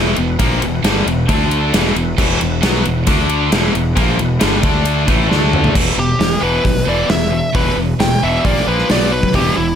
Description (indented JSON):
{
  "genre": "hard rock",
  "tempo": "134 BPM",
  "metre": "4/4",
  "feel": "straight",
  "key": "unclear",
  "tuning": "A4 = 440 Hz",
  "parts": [
    { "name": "overdriven tonewheel organ", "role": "sustained chords", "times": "0.0-5.7 s", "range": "D4 to F#5", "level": "-29 LUFS", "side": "right 1 dB", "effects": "slow rotary speaker, chorus vibrato" },
    { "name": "high-gain distorted guitar", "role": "riff", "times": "0.0-9.8 s", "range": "E2 to D4", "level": "-21 LUFS", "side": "right 11 dB", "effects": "distortion" },
    { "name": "tight distorted guitar", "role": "riff", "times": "0.0-9.8 s", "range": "E2 to D4", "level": "-20 LUFS", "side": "left 10 dB", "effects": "distortion" },
    { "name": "fuzz fingered electric bass", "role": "bass", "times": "0.0-9.7 s", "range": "E1 to D2", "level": "-19 LUFS", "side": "equal", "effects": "overdrive" },
    { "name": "gated 80s drum kit", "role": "drums", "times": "0.2-9.4 s", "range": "crash cymbal, hi-hat, kick drum, ride cymbal, snare drum, toms", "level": "-18 LUFS", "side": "equal", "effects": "none" },
    { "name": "bluesy overdriven lead guitar", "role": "melody", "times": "6.0-9.8 s", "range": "E4 to G5", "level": "-18 LUFS", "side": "right 1 dB", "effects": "distortion" }
  ],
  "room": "light reverb",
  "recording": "none",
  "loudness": "-12 LUFS",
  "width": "side -8 dB against mid",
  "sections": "0.0-5.8 A section; 5.8-9.8 B section",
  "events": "drum fill 5.3-5.8; lead electric guitar solo 5.8-9.8",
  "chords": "0.0 E5; 1.3 D5; 1.7 E5; 3.1 D5; 3.5 E5; 4.6 D5; 5.1 E5; 5.3 D5; 5.8 E5; 8.4 A#5; 8.9 B5"
}